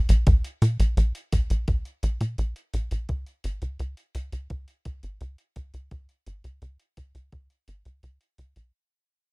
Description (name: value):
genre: synthwave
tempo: 85 BPM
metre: 4/4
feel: straight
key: unclear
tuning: A4 = 439 Hz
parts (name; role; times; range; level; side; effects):
- tight sequencer bass; bass; 0.0-8.7 s; Ab1 to Bb2; -24 LUFS; equal; none
- electronic hi-hat; drums; 0.1-8.7 s; none; -43 LUFS; equal; overdrive
- electronic kick drum; drums; 0.3-7.5 s; none; -24 LUFS; equal; overdrive
room: little or no reverb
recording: dark, warm production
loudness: -24 LUFS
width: side -30 dB against mid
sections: 0.0-8.7 A section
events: fade-out 0.0-8.7; filter sweep on analog synth bass 0.0-8.7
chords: none